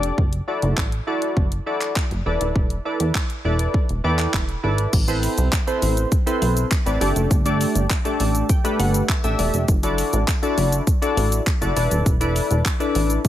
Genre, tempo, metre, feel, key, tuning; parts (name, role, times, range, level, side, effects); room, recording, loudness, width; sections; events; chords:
dance-pop; 101 BPM; 4/4; straight; A dorian; A4 = 435 Hz
glassy digital keys; accompaniment; 0.0-13.2 s; A3 to B5; -23 LUFS; left 1 dB; chorus, sidechain pumping
plucky analog bass; bass; 0.0-13.3 s; D#1 to E2; -21 LUFS; equal; sidechain pumping
pop drum kit; drums; 0.0-13.3 s; crash cymbal, handclaps, hi-hat, kick drum, shaker; -22 LUFS; equal
little or no reverb; -18 LUFS; side -12 dB against mid
0.0-4.9 A section; 4.9-13.3 B section
synth keys fill 3.7-4.9, 7.9-9.7
0.2 Dadd9/F#; 2.3 E7sus4; 4.9 Amadd9; 7.0 Gsus2; 9.7 Dadd9/F#; 11.8 E7sus4